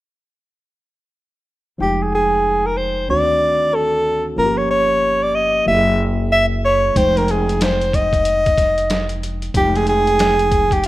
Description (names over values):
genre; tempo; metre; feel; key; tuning
hip hop, jazz-hop; 93 BPM; 4/4; swing 62% on 16ths; F dorian; A4 = 440 Hz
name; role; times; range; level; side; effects
breathy soprano saxophone; melody; 1.8-10.8 s; G4 to Fb5; -16 LUFS; equal; none
tine electric piano; accompaniment; 1.8-10.9 s; Eb3 to G5; -24 LUFS; equal; medium stereo tremolo
upright bass; bass; 1.8-10.9 s; F1 to D2; -23 LUFS; equal; none
trip hop sampler-style drum kit; drums; 7.0-10.9 s; hi-hat, kick drum, snare drum; -21 LUFS; equal; none
room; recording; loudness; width
light reverb; rough home demo mix; -14 LUFS; side -16 dB against mid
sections
1.8-10.9 A section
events
none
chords
1.8 Fm9; 3.1 D7b9; 4.4 Gm7b5; 5.7 Gb9; 7.0 Fm9